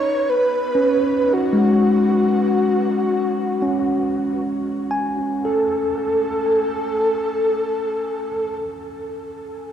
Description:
ambient; free time; A lydian; A4 = 440 Hz
breathy flute-like synth lead; melody; 0.0-8.6 s; F#4 to C#5; -20 LUFS; equal; ensemble chorus, diffuse ambient delay
bright tine electric piano; arpeggios; 0.0-9.7 s; G#3 to G#5; -21 LUFS; equal; diffuse ambient delay
wet concert hall reverb, RT60 2.0 s; -17 LUFS; side -9 dB against mid
0.0-5.4 A section; 5.4-9.6 B section
0.0 E69 (rootless); 5.4 A

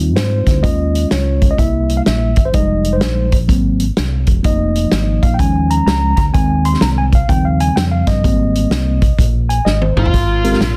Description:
uptempo gospel; 126 BPM; 4/4; swing 65% on 8ths; Ab major; A4 = 436 Hz
mellow tine electric piano; accompaniment; 0.0-10.8 s; Ab2 to C6; -20 LUFS; equal
fingered electric bass; bass; 0.0-10.8 s; Fb1 to Ab2; -19 LUFS; equal
natural country drum kit; drums; 0.2-10.8 s; hi-hat, kick drum, snare drum, toms; -18 LUFS; equal
edgy saxophone section; melody; 10.0-10.8 s; Bb3 to F4; -24 LUFS; equal
overdriven slide guitar; melody; 10.0-10.8 s; F4; -22 LUFS; equal
light reverb, studio ambience; dense, heavily limited modern master; -14 LUFS; mono
0.0-10.1 A section
tine electric piano solo 0.0-10.1; drum fill 9.7-10.1
0.0 Dbmaj9#11 (rootless); 0.6 Eb9sus4; 1.6 C7; 2.5 Fm9; 3.5 Ab7; 4.4 Fm11; 5.4 Eb9sus4; 6.3 Ab/Eb; 7.3 Eb13; 8.2 Abmaj9

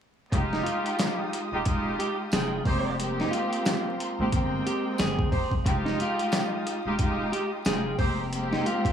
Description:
hip hop, boom-bap hip-hop; 90 BPM; 4/4; swing 59% on 16ths; F minor; A4 = 440 Hz
muted studio string section; accompaniment; 0.3-8.9 s; Ab3 to G5; -29 LUFS; equal; high-pass filter, low-pass filter, plate reverb
warm studio string section; sustained chords; 0.3-8.9 s; Ab3 to Eb6; -39 LUFS; equal; high-pass filter, low-pass filter, plate reverb
saturated sub bass; bass; 0.3-8.6 s; Eb1 to Ab1; -33 LUFS; left 1 dB
boom bap sampler-style drum kit; drums; 0.3-8.9 s; hi-hat, kick drum, snare drum; -28 LUFS; equal
electric guitar at the edge of break-up; melody; 0.5-8.9 s; Eb4 to Ab4; -32 LUFS; right 1 dB; high-pass filter, low-pass filter, plate reverb, digital delay
tambourine; percussion; 1.0-7.8 s; -43 LUFS; right 8 dB
mellow horn section; stabs; 2.7-8.2 s; Eb4 to C5; -33 LUFS; right 2 dB; high-pass filter, low-pass filter, plate reverb, digital delay
light reverb; vinyl crackle, small room ambience; -25 LUFS; side -8 dB against mid
0.3-8.9 A section
0.3 Fm9; 2.7 Abmaj9/F; 5.7 Fm9; 8.0 Abmaj9/F

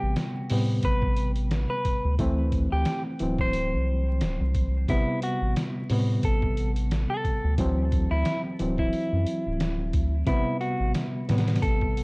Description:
trip hop; 89 BPM; 4/4; swing 56% on 16ths; A dorian; A4 = 440 Hz
clean electric guitar; melody; 0.0-12.0 s; E4 to C5; -31 LUFS; equal; vintage 12-bit sampler grit, dub echo
overdriven reed electric piano; accompaniment; 0.0-12.0 s; C3 to C4; -29 LUFS; equal; harmonic tremolo, low-pass filter
round analog bass; bass; 0.0-12.0 s; D1 to A2; -26 LUFS; equal
trip hop sampler-style drum kit; drums; 0.2-12.0 s; hi-hat, kick drum, snare drum; -28 LUFS; equal
little or no reverb; worn, warbling old tape, cassette tape, vinyl crackle, warbly pitch drift; -23 LUFS; side -30 dB against mid
0.0-12.0 A section
0.0 Am7; 2.2 D7; 4.9 Am7; 7.6 D7; 10.3 Am7

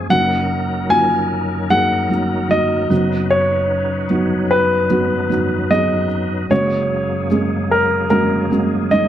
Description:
pop; 75 BPM; 4/4; straight; A4 = 440 Hz
warm grand piano; melody; 0.0-9.1 s; A#4 to G#5; -18 LUFS; left 1 dB
felt-muted upright piano; accompaniment; 0.0-9.1 s; F#1 to G#4; -19 LUFS; right 2 dB
bright tonewheel organ; sustained chords; 0.0-9.1 s; F#2 to B4; -23 LUFS; left 1 dB; chorus vibrato, fast rotary speaker
light reverb, small room reverb; -15 LUFS; side -11 dB against mid
0.0-9.1 A section
0.1 D#m/F#; 2.9 B/F#; 6.5 F#add9

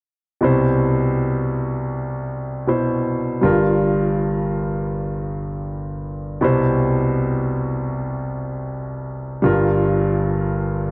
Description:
pop; 80 BPM; 4/4; straight; C major; A4 = 441 Hz
bright concert grand piano; accompaniment; 0.4-10.9 s; G1 to C5; -21 LUFS; equal
light reverb; dry, close 1970s-style studio recording; -21 LUFS; mono
0.4-10.9 A section
0.4 Cmaj7; 3.4 Gm7; 6.4 Cmaj7; 9.4 Gm7

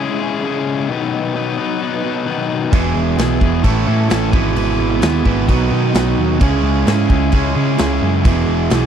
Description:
classic rock; 130 BPM; 4/4; straight; E major; A4 = 440 Hz
string machine, full ensemble; sustained chords; 0.0-8.9 s; B3 to E5; -29 LUFS; right 3 dB
cranked stack guitar; riff; 0.0-8.9 s; E2 to B4; -19 LUFS; left 7 dB; overdrive
crunchy overdriven guitar; riff; 2.7-8.9 s; E2 to C#4; -18 LUFS; right 17 dB
overdriven picked electric bass; bass; 2.7-8.9 s; E1 to C#3; -18 LUFS; equal
big rock drum kit; drums; 2.7-8.8 s; crash cymbal, kick drum, snare drum; -18 LUFS; equal
small room ambience; dry, close 1970s-style studio recording; -14 LUFS; side -8 dB against mid
0.0-8.9 A section
0.0 C#m; 0.9 B; 2.7 E; 3.7 A; 4.3 E/G#; 5.5 B; 6.4 C#m; 8.2 E

